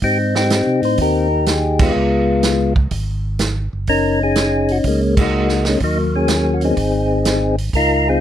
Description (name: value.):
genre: soul jazz organ trio.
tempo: 124 BPM.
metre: 4/4.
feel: swing 68% on 8ths.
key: unclear.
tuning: A4 = 435 Hz.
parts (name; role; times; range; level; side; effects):
percussive tonewheel organ; melody; 0.0-8.2 s; Gb3 to C5; -16 LUFS; left 2 dB; slow rotary speaker.
tonewheel organ; bass; 0.0-8.2 s; Gb1 to C3; -20 LUFS; right 1 dB; overdrive, chorus vibrato, slow rotary speaker.
vintage drum kit; drums; 0.0-7.9 s; crash cymbal, hi-hat, kick drum, snare drum; -20 LUFS; right 3 dB; none.
room: little or no reverb.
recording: close, detailed microphones.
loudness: -14 LUFS.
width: side -10 dB against mid.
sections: 0.0-8.2 A section.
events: band accent 1.7, 5.1.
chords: 0.0 Abmaj7; 2.0 Db7; 3.9 Gb69; 5.8 Ebm7; 6.8 Ab.